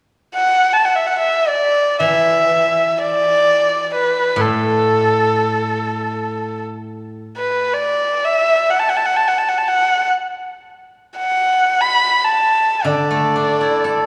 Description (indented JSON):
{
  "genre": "chinese traditional, Chinese chamber ensemble",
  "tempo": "free time",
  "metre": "none",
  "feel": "none",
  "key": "D gong mode",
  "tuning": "A4 = 440 Hz",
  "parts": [
    { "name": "rich erhu", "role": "melody", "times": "0.3-14.1 s", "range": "A4 to B5", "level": "-17 LUFS", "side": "equal", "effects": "none" },
    { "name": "steel-string zither", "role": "accompaniment", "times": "2.0-14.1 s", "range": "A2 to A4", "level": "-23 LUFS", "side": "equal", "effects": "none" }
  ],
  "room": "wet concert hall reverb, RT60 2.4 s",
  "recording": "recorded in a church or concert hall, studio reverb",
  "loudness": "-16 LUFS",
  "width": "mono",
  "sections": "0.0-14.1 A section",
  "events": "none",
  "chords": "none"
}